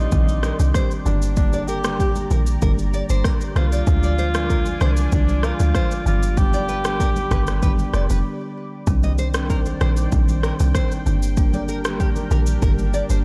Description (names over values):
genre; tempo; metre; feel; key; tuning
afrobeats; 96 BPM; 4/4; straight; C minor; A4 = 439 Hz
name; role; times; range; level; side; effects
breathy alto saxophone; melody; 0.0-8.3 s; D4 to G4; -30 LUFS; equal; digital delay
marimba with medium mallets; accompaniment; 0.0-13.2 s; D3 to D4; -30 LUFS; equal; none
warm analog pad; sustained chords; 0.0-13.2 s; Eb3 to D6; -36 LUFS; equal; chorus
deep log drum bass; bass; 0.0-13.2 s; F1 to D2; -22 LUFS; equal; none
afro-pop drum kit; drums; 0.1-13.2 s; kick drum, rim click, shaker; -24 LUFS; equal; none
congas; percussion; 0.1-12.9 s; none; -35 LUFS; equal; none
nylon-string guitar; riff; 0.4-13.2 s; G4 to Eb5; -33 LUFS; equal; digital delay
room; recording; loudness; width
small room ambience; dark, warm production; -20 LUFS; mono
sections
0.0-8.9 A section; 8.9-13.2 B section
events
break 8.2-8.9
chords
0.0 Cmadd9; 1.1 Gm; 3.9 Ddim; 6.1 G; 8.9 Cmadd9; 11.1 Gm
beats
0.12 0.75 | 1.37 2.00 2.62 3.25 | 3.87 4.50 5.12 5.75 | 6.37 7.00 7.62 8.25 | 8.87 9.50 10.12 10.75 | 11.37 12.00 12.62